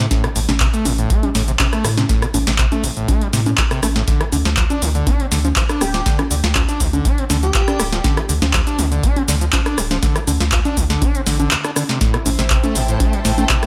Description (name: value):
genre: acid house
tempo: 121 BPM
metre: 4/4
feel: straight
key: unclear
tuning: A4 = 439 Hz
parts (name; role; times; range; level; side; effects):
- overdriven acid bass; riff; 0.0-13.7 s; D2 to D4; -25 LUFS; equal; distortion, tube saturation, subtle chorus, diffuse ambient delay
- warm sub bass; bass; 0.0-13.5 s; D1 to A2; -22 LUFS; equal; sidechain pumping
- booming analog drum machine; drums; 0.1-13.7 s; congas, handclaps, hi-hat, rim click, shaker, snare drum; -22 LUFS; equal; none
- electronic kick drum; drums; 0.1-13.6 s; none; -21 LUFS; equal; none
- airy dreamy lead; melody; 5.8-8.1 s; G4; -29 LUFS; equal; chorus, analog delay
- clear symphonic string section; texture; 12.0-13.7 s; E4 to A5; -28 LUFS; equal; sidechain pumping
room: light reverb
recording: none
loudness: -17 LUFS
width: mono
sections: 0.0-13.7 A section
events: none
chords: 0.0 Am; 4.1 Dm; 12.0 Am7